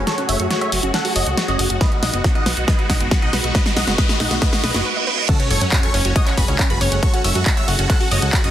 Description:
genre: uplifting trance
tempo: 138 BPM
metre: 4/4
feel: straight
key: unclear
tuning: A4 = 439 Hz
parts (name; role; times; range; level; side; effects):
- big supersaw lead; melody; 0.0-8.5 s; C#4 to F#5; -23 LUFS; equal; phaser, sidechain pumping, low-pass filter, digital delay
- wide unison pluck; arpeggios; 0.0-8.5 s; B3 to F#5; -28 LUFS; right 2 dB; cassette tape, sidechain pumping, digital delay
- fat analog bass; bass; 0.0-8.5 s; F#1 to F#2; -22 LUFS; equal; sidechain pumping
- riser, reverse cymbal and sub drop; sound effects; 1.9-7.0 s; none; -27 LUFS; right 1 dB; none
- analog string pad; sustained chords; 0.1-8.5 s; G#3 to C#5; -29 LUFS; right 1 dB; ensemble chorus, sidechain pumping
- big-room dance drum kit; drums; 0.1-8.5 s; crash cymbal, handclaps, hi-hat, snare drum; -22 LUFS; equal; studio reverb
- electronic kick drum; drums; 1.8-8.4 s; none; -18 LUFS; equal; studio reverb
- plucky unison lead; second line; 5.3-8.5 s; C#5 to F#6; -27 LUFS; left 1 dB; sidechain pumping, digital delay
room: light reverb, digital ambience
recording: dense, heavily limited modern master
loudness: -15 LUFS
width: side -11 dB against mid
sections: 0.0-5.3 A section; 5.3-8.5 B section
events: build-up 0.0-5.3; drum fill 0.0-4.9; filter sweep on supersaw synth 0.0-5.3; filter sweep on synth pluck 0.0-5.3; riser 1.9-4.9; reverse cymbal 4.4-5.3; drop 5.3-8.5; impact 5.3-7.0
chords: 0.0 F#madd9; 1.8 B6; 5.3 F#madd9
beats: | 0.07 0.51 0.94 1.38 | 1.81 2.25 2.68 3.11 | 3.55 3.98 4.42 4.85 | 5.29 5.72 6.16 6.59 | 7.03 7.46 7.90 8.33

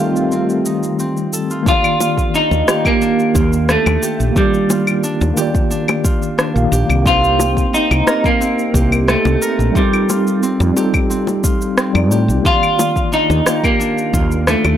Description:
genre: sunset chillout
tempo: 89 BPM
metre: 4/4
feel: straight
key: Eb lydian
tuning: A4 = 440 Hz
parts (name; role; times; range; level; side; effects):
- mellow tine electric piano; accompaniment; 0.0-14.8 s; Eb3 to F5; -20 LUFS; moving between left 4 dB and right 3 dB; medium stereo tremolo, auto-pan, analog delay
- lush unison pad; sustained chords; 0.0-1.6 s; Eb3 to F4; -22 LUFS; left 1 dB; chorus
- Celtic harp; arpeggios; 0.0-14.8 s; C4 to Bb4; -24 LUFS; equal; analog delay
- electronic shaker, claves and rim click; drums; 0.2-14.8 s; none; -21 LUFS; left 1 dB; small room ambience
- semi-hollow electric guitar; melody; 1.7-14.8 s; G3 to F4; -16 LUFS; right 1 dB; wide subtle chorus, analog delay
- electronic kick drum; drums; 1.7-14.3 s; none; -18 LUFS; equal; small room ambience
- bongos; percussion; 2.0-14.8 s; none; -22 LUFS; left 5 dB; none
- woody fretless electric bass; bass; 2.5-14.7 s; Bb1 to A2; -16 LUFS; equal; none
room: light reverb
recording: dry, gritty hardware recording, transformer saturation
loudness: -13 LUFS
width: side -10 dB against mid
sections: 0.0-1.7 A section; 1.7-14.8 B section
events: filter sweep on analog synth pad 0.0-1.7; filter sweep on harp 0.0-1.7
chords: 0.0 F9; 1.7 Ebmaj9; 7.1 Cm7; 9.8 F9; 12.5 Ebmaj9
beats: 0.32 0.99 | 1.67 2.34 3.02 3.69 | 4.36 5.04 5.71 6.38 | 7.06 7.73 8.41 9.08 | 9.76 10.43 11.10 11.78 | 12.45 13.13 13.80 14.47

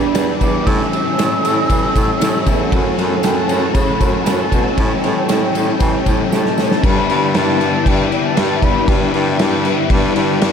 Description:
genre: rock, shoegaze and dream pop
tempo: 117 BPM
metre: 4/4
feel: straight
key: G lydian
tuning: A4 = 436 Hz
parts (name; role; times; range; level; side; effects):
- mellow jazz flute; melody; 0.0-9.9 s; E5 to E6; -23 LUFS; left 1 dB; analog delay
- analog string pad; sustained chords; 0.0-10.5 s; E4 to E6; -24 LUFS; equal; ensemble chorus
- picked twelve-string acoustic guitar; arpeggios; 0.0-10.5 s; E3 to G4; -27 LUFS; right 8 dB; none
- biting overdriven guitar; riff; 0.0-10.5 s; G2 to F#4; -20 LUFS; left 11 dB; analog chorus
- electric guitar through a small old amp; riff; 0.0-6.8 s; F#2 to B4; -21 LUFS; right 8 dB; reverse reverb
- breathy baritone saxophone; bass; 0.0-10.5 s; E2 to E3; -20 LUFS; equal; none
- loose indie drum kit; drums; 0.1-10.5 s; crash cymbal, kick drum, ride cymbal, snare drum; -18 LUFS; equal; none
- tambourine; percussion; 0.2-6.7 s; none; -38 LUFS; right 14 dB; none
room: moderate lush hall reverb, RT60 1.9 s, studio reverb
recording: dreamy mix soaked in reverb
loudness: -13 LUFS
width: side -7 dB against mid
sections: 0.0-6.8 A section; 6.8-10.5 B section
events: drum fill 6.3-6.8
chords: 0.0 Em7; 0.7 A7; 2.7 F#m7; 4.8 A7; 6.8 G6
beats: 0.15 | 0.67 1.18 1.69 2.21 | 2.72 3.23 3.75 4.26 | 4.78 5.29 5.80 6.32 | 6.83 7.34 7.86 8.37 | 8.88 9.40 9.91 10.42

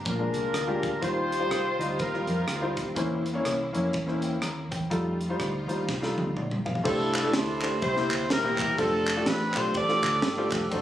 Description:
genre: uptempo gospel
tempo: 124 BPM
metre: 4/4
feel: swing 60% on 8ths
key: unclear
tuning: A4 = 439 Hz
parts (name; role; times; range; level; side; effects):
- clear concert grand piano; accompaniment; 0.0-10.8 s; Bb2 to Bb5; -30 LUFS; left 2 dB; none
- rich studio string section; sustained chords; 0.0-6.8 s; G3 to F4; -39 LUFS; right 1 dB; none
- warm horn section; melody; 0.1-2.9, 6.9-10.8 s; C4 to D5; -27 LUFS; equal; none
- hollow-body short-scale fingered electric bass; bass; 0.1-10.8 s; Eb1 to F2; -34 LUFS; right 1 dB; none
- crisp fusion drum kit; drums; 0.1-10.8 s; crash cymbal, hi-hat, kick drum, ride cymbal, rim click, snare drum, toms; -32 LUFS; right 1 dB; none
- group handclap; percussion; 7.1-10.6 s; none; -31 LUFS; right 1 dB; none
room: light reverb, small room ambience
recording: recorded on a phone in the room, studio reverb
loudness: -25 LUFS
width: side -12 dB against mid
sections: 0.0-6.8 A section; 6.8-10.8 B section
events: drum fill 5.9-6.8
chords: 0.0 Bb7; 1.0 Eb69; 3.0 C7b9; 4.9 F9; 6.8 C69; 7.8 C7; 8.8 F69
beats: 0.05 0.53 | 1.02 1.50 1.99 2.48 | 2.96 3.45 3.93 4.42 | 4.91 5.39 5.88 6.36 | 6.85 7.33 7.82 8.30 | 8.78 9.27 9.75 10.23 | 10.72

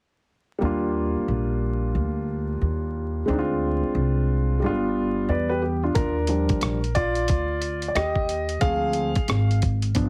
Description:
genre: hip hop, jazz-hop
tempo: 90 BPM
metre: 4/4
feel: swing 63% on 16ths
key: Eb major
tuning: A4 = 441 Hz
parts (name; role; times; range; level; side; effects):
- dark baby grand piano; accompaniment; 0.6-10.1 s; F3 to F5; -27 LUFS; equal; none
- upright bass; bass; 0.6-10.1 s; G1 to Fb2; -28 LUFS; equal; none
- dusty soul sampler-style drum kit; drums; 6.0-10.1 s; hi-hat, kick drum, rim click; -28 LUFS; equal; none
room: light reverb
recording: heavily compressed radio sound, vinyl crackle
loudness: -24 LUFS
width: mono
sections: 0.6-6.0 A section; 6.0-10.1 B section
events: grand piano solo 6.0-10.1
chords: 0.6 Ebmaj7; 3.3 Dm7b5; 4.6 G7; 6.0 Ebmaj7; 8.6 Dm7b5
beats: | 0.62 1.29 1.95 2.62 | 3.29 3.95 4.62 5.29 | 5.95 6.62 7.29 7.95 | 8.62 9.29 9.95

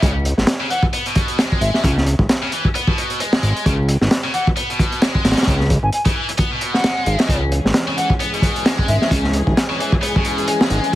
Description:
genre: breakbeat, breaks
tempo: 132 BPM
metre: 4/4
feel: swing 57% on 16ths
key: C# minor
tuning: A4 = 440 Hz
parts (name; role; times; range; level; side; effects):
- hollow concert flute; melody; 0.0-9.1 s; E5 to G#5; -24 LUFS; equal; old record sound, dub echo
- heavy high-gain guitar; riff; 0.0-11.0 s; B2 to B3; -23 LUFS; left 1 dB; distortion, tube saturation, vintage 12-bit sampler grit, dub echo
- fat analog bass; bass; 0.0-10.8 s; G#1 to C#2; -18 LUFS; equal; none
- crunchy breakbeat drum kit; drums; 0.0-10.9 s; hi-hat, kick drum, snare drum; -18 LUFS; equal; none
- dark studio string section; sustained chords; 7.3-11.0 s; E3 to G#4; -24 LUFS; left 2 dB; vintage 12-bit sampler grit, sidechain pumping
room: light reverb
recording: heavily compressed radio sound, multiband compression, vinyl crackle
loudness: -15 LUFS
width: side -14 dB against mid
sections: 0.0-11.0 A section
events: none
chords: 0.0 C#m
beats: | 0.02 0.47 0.93 1.38 | 1.84 2.29 2.75 3.20 | 3.66 4.11 4.57 5.02 | 5.47 5.93 6.38 6.84 | 7.29 7.75 8.20 8.66 | 9.11 9.56 10.02 10.47 | 10.93

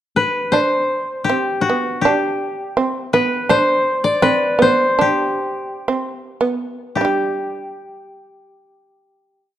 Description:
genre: japanese traditional, Japanese chamber music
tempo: 51-84 BPM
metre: 2/4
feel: rubato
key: G ryukyu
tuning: A4 = 439 Hz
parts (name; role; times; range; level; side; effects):
- koto; melody; 0.2-9.6 s; F#4 to D5; -17 LUFS; left 2 dB; none
- shamisen; second line; 0.5-9.6 s; G3 to G4; -20 LUFS; right 3 dB; none
room: moderate recital hall reverb, RT60 1.5 s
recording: dark, warm production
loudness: -16 LUFS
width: side -11 dB against mid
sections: 0.0-0.6 pickup bar; 0.6-7.0 A section; 7.0-9.6 final chord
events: slowing down 3.5-7.0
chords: none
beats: | 0.56 1.32 | 2.05 2.77 | 3.49 4.22 | 4.99 5.88 | 6.96 8.13 | 9.22

